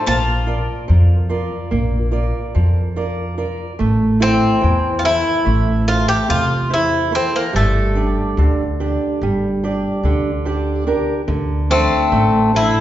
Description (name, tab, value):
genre	greek folk, Greek bouzouki band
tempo	144 BPM (eighths)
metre	9/8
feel	straight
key	A phrygian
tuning	A4 = 440 Hz
part	Greek bouzouki	melody	0.0-12.8 s	A3 to A5	-18 LUFS	left 1 dB	none
part	Greek bouzouki	second line	0.0-1.7, 11.7-12.8 s	A3 to F4	-21 LUFS	left 4 dB	none
part	fingerpicked steel-string acoustic guitar	accompaniment	0.1-12.8 s	C3 to E5	-20 LUFS	right 2 dB	none
part	upright bass	bass	0.1-12.7 s	G1 to F2	-18 LUFS	equal	none
room	wet recital hall reverb, RT60 1.4 s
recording	recorded in a church or concert hall, nothing above 7.6 kHz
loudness	-15 LUFS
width	side -12 dB against mid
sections	0.0-3.8 A section; 3.8-12.8 B section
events	none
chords	0.1 Bb; 3.8 Am; 7.5 G5; 11.3 Dm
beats	| 0.07 0.49 0.90 1.32 1.73 2.15 2.56 2.98 3.40 | 3.81 4.23 4.64 5.06 5.47 5.89 6.30 6.72 7.13 | 7.55 7.96 8.38 8.80 9.21 9.63 10.04 10.46 10.87 | 11.29 11.71 12.12 12.54